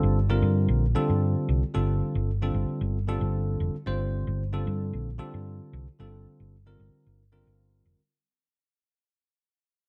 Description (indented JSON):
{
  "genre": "electric jazz fusion",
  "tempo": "113 BPM",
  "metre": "4/4",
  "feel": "straight",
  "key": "G minor",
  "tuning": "A4 = 437 Hz",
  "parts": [
    { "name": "bell-like tine electric piano", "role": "accompaniment", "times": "0.0-8.0 s", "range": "D3 to C5", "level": "-32 LUFS", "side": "equal", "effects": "analog chorus" },
    { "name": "hollow-body short-scale fingered electric bass", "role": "bass", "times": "0.0-8.0 s", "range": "F1 to G2", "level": "-29 LUFS", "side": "equal", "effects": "none" }
  ],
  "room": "light reverb, studio ambience",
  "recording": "none",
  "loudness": "-27 LUFS",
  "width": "mono",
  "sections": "0.0-8.1 A section",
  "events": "fade-out 0.0-8.1",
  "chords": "0.0 Gm9"
}